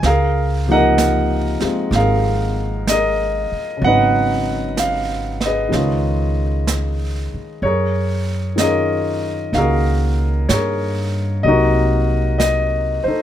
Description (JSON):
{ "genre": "jazz ballad", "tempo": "63 BPM", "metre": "4/4", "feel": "swing 69% on 8ths", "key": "unclear", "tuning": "A4 = 441 Hz", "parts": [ { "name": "warm concert grand piano", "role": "accompaniment", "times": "0.0-13.2 s", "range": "C3 to Gb5", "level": "-18 LUFS", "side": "left 1 dB", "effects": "none" }, { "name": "upright bass", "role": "bass", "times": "0.0-13.1 s", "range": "Ab1 to G2", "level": "-20 LUFS", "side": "right 1 dB", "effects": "none" }, { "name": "jazz brush drum kit", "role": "drums", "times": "0.0-13.2 s", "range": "brushed snare drum, hi-hat, snare drum", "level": "-26 LUFS", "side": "right 4 dB", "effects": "none" } ], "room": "light reverb", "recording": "none", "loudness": "-16 LUFS", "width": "side -11 dB against mid", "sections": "0.0-13.2 A section", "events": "none", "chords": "0.0 Db69; 3.8 Abm7; 5.7 Db9; 7.6 Gb69; 11.4 Cm7b5" }